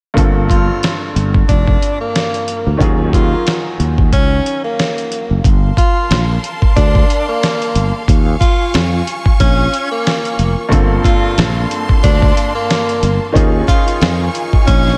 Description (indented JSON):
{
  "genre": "hip hop, boom-bap hip-hop",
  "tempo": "91 BPM",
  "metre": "4/4",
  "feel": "swing 57% on 16ths",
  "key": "G minor",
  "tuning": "A4 = 439 Hz",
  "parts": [
    { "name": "clear upright piano", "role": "accompaniment", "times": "0.1-5.5, 10.7-15.0 s", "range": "G2 to A4", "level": "-23 LUFS", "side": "equal", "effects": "none" },
    { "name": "sustaining fretless electric bass", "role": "bass", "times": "0.2-14.9 s", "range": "F1 to F2", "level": "-18 LUFS", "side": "equal", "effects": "none" },
    { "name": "dusty soul sampler-style drum kit", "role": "drums", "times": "0.2-14.9 s", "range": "hi-hat, kick drum, snare drum", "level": "-17 LUFS", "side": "equal", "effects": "vintage 12-bit sampler grit" },
    { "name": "breathy tenor saxophone", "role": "melody", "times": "0.5-15.0 s", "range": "Bb3 to F4", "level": "-21 LUFS", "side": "equal", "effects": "analog delay" },
    { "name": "warm studio string section", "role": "sustained chords", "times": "5.4-15.0 s", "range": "Bb3 to Db6", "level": "-26 LUFS", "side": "equal", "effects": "none" }
  ],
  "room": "moderate lush hall reverb, RT60 2.7 s",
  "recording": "dreamy mix soaked in reverb",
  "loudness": "-14 LUFS",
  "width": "mono",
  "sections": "0.2-5.4 A section; 5.4-15.0 B section",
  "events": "none",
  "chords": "0.2 Gm11; 2.8 Ebm11; 5.4 Gm11; 8.1 Eb9sus4 (rootless); 10.7 Gm11; 13.4 Eb9sus4",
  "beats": "| 0.17 0.83 1.49 2.15 | 2.81 3.46 4.12 4.78 | 5.44 6.10 6.76 7.42 | 8.08 8.74 9.40 10.06 | 10.72 11.38 12.04 12.70 | 13.36 14.01 14.67"
}